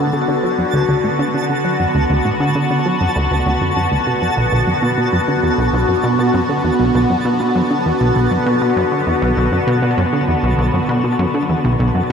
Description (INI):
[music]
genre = ambient, sequencer-driven space music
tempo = 99 BPM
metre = 4/4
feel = straight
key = unclear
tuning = A4 = 440 Hz
[part]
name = phased analog pad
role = sustained chords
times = 0.0-12.1 s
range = D3 to F#4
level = -17 LUFS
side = equal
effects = phaser, chorus
[part]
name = plucky analog bass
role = riff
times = 0.0-12.1 s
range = B1 to F#3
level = -17 LUFS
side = equal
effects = ping-pong delay
[part]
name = twinkling granular texture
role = texture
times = 0.0-12.1 s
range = A5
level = -26 LUFS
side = right 2 dB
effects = built-in reverb
[sound]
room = wet huge ambient reverb, RT60 9.3 s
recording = cassette tape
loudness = -14 LUFS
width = side -6 dB against mid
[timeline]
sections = 0.0-12.1 A section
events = filter sweep on analog synth bass 0.0-12.1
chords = 0.0 D; 4.4 Bm